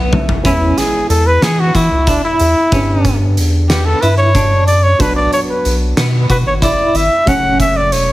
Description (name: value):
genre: progressive instrumental, band music in an uneven meter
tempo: 185 BPM (eighths)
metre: 7/8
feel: straight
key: unclear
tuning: A4 = 440 Hz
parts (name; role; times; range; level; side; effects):
- mellow trumpet; melody; 0.0-8.1 s; D4 to F#5; -14 LUFS; equal; plate reverb
- warm concert grand piano; accompaniment; 0.0-8.1 s; D3 to F#5; -24 LUFS; right 1 dB; plate reverb
- semi-hollow electric guitar; arpeggios; 0.0-7.8 s; B3 to F#4; -20 LUFS; right 1 dB; tremolo, plate reverb, digital delay
- rubbery square bass; bass; 0.0-8.1 s; E1 to E3; -14 LUFS; equal; none
- oversized low-tuned drum kit; drums; 0.1-8.1 s; hi-hat, kick drum, snare drum, toms; -18 LUFS; equal; none
room: light reverb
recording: heavily compressed radio sound, multiband compression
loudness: -10 LUFS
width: side -16 dB against mid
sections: 0.5-8.1 A section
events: grand piano fill 0.0-0.5; drum fill 0.0-0.5; trumpet solo 0.5-8.1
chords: 0.5 E; 2.7 G; 5.0 Bm; 7.3 F#m